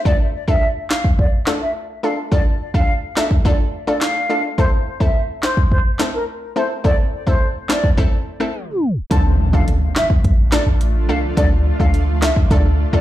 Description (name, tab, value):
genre	dancehall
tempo	106 BPM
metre	4/4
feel	straight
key	D minor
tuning	A4 = 440 Hz
part	analog pluck	accompaniment	0.0-13.0 s	A3 to A4	-24 LUFS	left 1 dB	chorus, sidechain pumping
part	concert flute	melody	0.1-13.0 s	Bb4 to A5	-23 LUFS	equal	ping-pong delay
part	afro-pop drum kit	drums	0.1-12.6 s	handclaps, hi-hat, kick drum, rim click, snare drum	-16 LUFS	equal	none
part	granular cloud pad	sustained chords	9.9-13.0 s	A3 to F4	-27 LUFS	right 1 dB	built-in reverb
part	clean 808-style bass	bass	9.1-13.0 s	A1 to D2	-17 LUFS	equal	none
part	impact	sound effects	9.1-11.4 s	none	-24 LUFS	equal	none
room	digital ambience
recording	played on a big sound system in a bare room, large studio reverb, tape stop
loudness	-15 LUFS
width	side -14 dB against mid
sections	0.0-9.1 A section; 9.1-13.0 B section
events	break 8.5-9.1; tape stop 8.5-9.1; impact 9.1-11.4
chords	0.1 Dm; 4.6 Am; 9.1 Dm